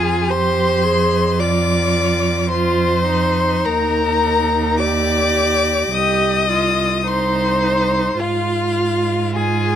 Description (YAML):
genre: classical, slow romantic movement for string quartet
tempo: 53 BPM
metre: 4/4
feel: rubato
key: unclear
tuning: A4 = 440 Hz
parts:
  - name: rich violin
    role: melody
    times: 0.0-9.8 s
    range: F5 to Eb6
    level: -21 LUFS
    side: left 7 dB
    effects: none
  - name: warm violin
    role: second line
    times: 0.0-9.8 s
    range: F4 to Eb5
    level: -20 LUFS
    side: left 2 dB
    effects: none
  - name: rich viola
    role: accompaniment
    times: 0.0-9.8 s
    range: Eb4 to Ab4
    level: -22 LUFS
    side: right 3 dB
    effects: none
  - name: rich cello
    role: bass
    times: 0.0-9.8 s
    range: C2 to Ab2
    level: -20 LUFS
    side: right 4 dB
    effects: none
room: light reverb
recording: close, detailed microphones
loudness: -15 LUFS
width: side -9 dB against mid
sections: 0.0-9.8 A section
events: none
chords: 0.0 Fm13; 3.7 Eb; 5.9 Cm; 8.2 Fm/Ab